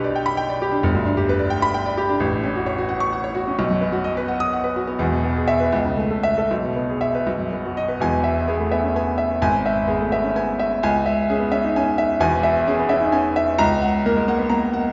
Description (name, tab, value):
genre	classical, virtuoso piano study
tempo	87 BPM (dotted quarters)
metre	6/8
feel	rubato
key	E major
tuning	A4 = 440 Hz
part	clear baby grand piano	solo	0.0-14.9 s	E1 to D#6	-21 LUFS	equal	none
room	wet concert hall reverb, RT60 2.0 s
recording	heard from further back in the room, nothing above 8.0 kHz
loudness	-21 LUFS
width	mono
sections	0.0-8.0 A section; 8.0-14.9 B section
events	none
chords	0.0 G/B; 0.8 G; 2.2 F#m/A; 3.6 B; 5.0 E; 5.7 A/C#; 6.5 E/B; 7.3 B; 8.0 E; 9.4 E/G#; 10.8 C#m; 12.2 C#m/E; 13.6 F#/C#